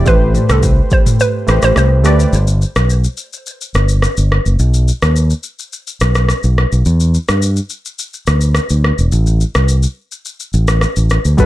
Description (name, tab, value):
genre	afrobeats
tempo	106 BPM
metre	4/4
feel	straight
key	unclear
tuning	A4 = 441 Hz
part	warm analog keys	accompaniment	0.0-2.4, 11.4-11.5 s	G3 to D5	-17 LUFS	right 2 dB	chorus
part	fingered electric bass	bass	0.0-11.5 s	E1 to G2	-12 LUFS	equal	none
part	hollow square pluck	melody	0.1-2.2 s	A4 to C5	-19 LUFS	right 2 dB	chorus, plate reverb, tape echo
part	afro-pop drum kit	drums	0.1-11.5 s	kick drum, rim click, shaker, toms	-17 LUFS	equal	overdrive
room	little or no reverb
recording	none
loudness	-11 LUFS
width	side -16 dB against mid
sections	0.0-2.3 A section; 2.3-11.5 B section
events	kick muted 1.2-2.3; break 2.3-11.4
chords	0.1 Am9; 2.3 G; 4.6 B; 6.9 Em7; 9.1 Am